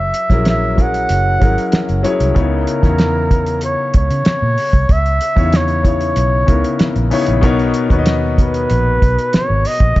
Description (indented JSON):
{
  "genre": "lush 1970s-style soul",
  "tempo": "95 BPM",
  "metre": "4/4",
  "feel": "straight",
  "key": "C# dorian",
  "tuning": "A4 = 440 Hz",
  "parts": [
    { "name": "breathy flugelhorn", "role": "melody", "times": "0.0-10.0 s", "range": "A#4 to F#5", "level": "-18 LUFS", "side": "right 1 dB", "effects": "none" },
    { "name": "clear grand piano", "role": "accompaniment", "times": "0.0-10.0 s", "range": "B2 to D#5", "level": "-18 LUFS", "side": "left 3 dB", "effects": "none" },
    { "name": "vintage muted fingered electric bass", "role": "bass", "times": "0.0-10.0 s", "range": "F#1 to C#3", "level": "-17 LUFS", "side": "equal", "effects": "none" },
    { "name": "cloth-damped thuddy drum kit", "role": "drums", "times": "0.1-10.0 s", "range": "hi-hat, kick drum, snare drum", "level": "-15 LUFS", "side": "equal", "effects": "none" }
  ],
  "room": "studio reverb",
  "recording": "nothing above 7.7 kHz",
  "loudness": "-12 LUFS",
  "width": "side -17 dB against mid",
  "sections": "0.0-10.0 A section",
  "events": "none",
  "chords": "0.0 F#7; 2.4 C#m7; 7.4 Bmaj7"
}